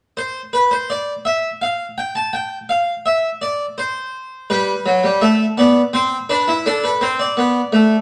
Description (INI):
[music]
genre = classical, baroque-style 3-part fugue for harpsichord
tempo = 83 BPM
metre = 3/4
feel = straight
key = unclear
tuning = A4 = 436 Hz
[part]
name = harpsichord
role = solo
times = 0.2-8.0 s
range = F#3 to A5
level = -18 LUFS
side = equal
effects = none
[sound]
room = wet stone room reverb, RT60 1.0 s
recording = none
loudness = -18 LUFS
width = mono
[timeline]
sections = 0.2-8.0 A section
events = none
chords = 0.2 N.C.; 4.5 G; 5.9 C; 6.7 D5